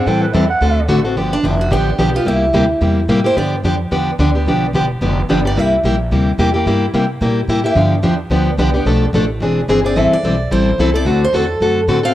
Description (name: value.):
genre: acoustic string swing (jazz manouche).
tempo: 218 BPM.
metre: 4/4.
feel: swing 57% on 8ths.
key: G mixolydian.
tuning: A4 = 440 Hz.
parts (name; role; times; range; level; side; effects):
growling clarinet; second line; 0.0-0.9 s; B4 to G5; -20 LUFS; right 4 dB; cassette tape.
picked plugged-in steel-string acoustic guitar; accompaniment; 0.0-12.1 s; B2 to A4; -15 LUFS; left 1 dB; cassette tape.
upright bass; bass; 0.0-12.1 s; E1 to C3; -19 LUFS; equal; none.
picked steel-string acoustic guitar; melody; 1.3-12.1 s; D4 to F5; -18 LUFS; right 2 dB; cassette tape.
room: light reverb, small room ambience.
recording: home recording on cassette.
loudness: -13 LUFS.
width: side -13 dB against mid.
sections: 0.0-1.2 A section; 1.2-12.1 A section.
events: clarinet solo 0.0-1.2; steel-string acoustic guitar solo 1.2-12.1.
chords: 0.1 Am7; 0.6 D7; 1.2 G7; 2.3 C7; 3.4 G7; 5.6 C7; 7.8 G7; 8.9 Bm7b5; 9.4 E7alt; 10.0 Am7; 11.1 D7.